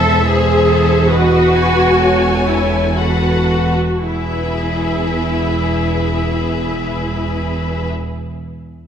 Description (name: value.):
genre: classical, slow romantic movement for string orchestra.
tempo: 53-75 BPM.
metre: 3/4.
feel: rubato.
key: E major.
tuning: A4 = 440 Hz.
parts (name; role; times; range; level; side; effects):
rich studio violin section; melody; 0.0-7.9 s; D#5 to G#5; -25 LUFS; left 4 dB; none.
rich studio violin section; second line; 0.0-7.9 s; G#4 to C#5; -22 LUFS; left 4 dB; none.
clear studio viola section; accompaniment; 0.0-7.9 s; E4 to A4; -17 LUFS; equal; none.
clear studio double bass section; bass; 0.0-7.9 s; E1; -21 LUFS; right 2 dB; none.
rich studio cello section; bass; 0.0-7.9 s; E2; -20 LUFS; right 2 dB; none.
room: wet concert hall reverb, RT60 2.1 s.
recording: minimal, uncompressed stereo recording.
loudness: -13 LUFS.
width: side -8 dB against mid.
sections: 0.0-4.0 A section; 4.0-7.2 B section.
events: slowing down 0.0-4.0.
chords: 0.0 Am/E; 1.1 B7(no3)/E; 4.0 E.